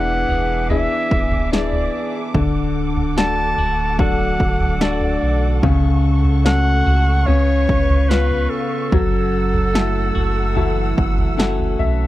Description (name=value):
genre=pop ballad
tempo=73 BPM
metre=4/4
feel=straight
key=F# minor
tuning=A4 = 440 Hz
part: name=warm clarinet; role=melody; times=0.0-11.4 s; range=A4 to A5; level=-22 LUFS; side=equal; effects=none
part: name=clear upright piano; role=accompaniment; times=0.0-12.1 s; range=C#3 to F#5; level=-23 LUFS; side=left 7 dB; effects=none
part: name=warm studio string section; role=sustained chords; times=0.0-12.1 s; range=G#4 to E6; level=-29 LUFS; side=equal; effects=none
part: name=twelve-string electric guitar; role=arpeggios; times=0.0-12.1 s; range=F#2 to G#4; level=-25 LUFS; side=right 6 dB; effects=none
part: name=sub bass with octave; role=bass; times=0.0-12.1 s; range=D1 to C#2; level=-20 LUFS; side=equal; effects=none
part: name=house drum kit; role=drums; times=0.3-12.0 s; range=kick drum, snare drum, toms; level=-20 LUFS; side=right 1 dB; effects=none
room=little or no reverb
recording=dry, close 1970s-style studio recording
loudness=-15 LUFS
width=side -15 dB against mid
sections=0.0-12.1 A section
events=upright piano fill 11.0-12.1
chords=0.0 E7; 2.3 D; 5.6 F#m/C#; 7.3 C#7; 8.9 F#m7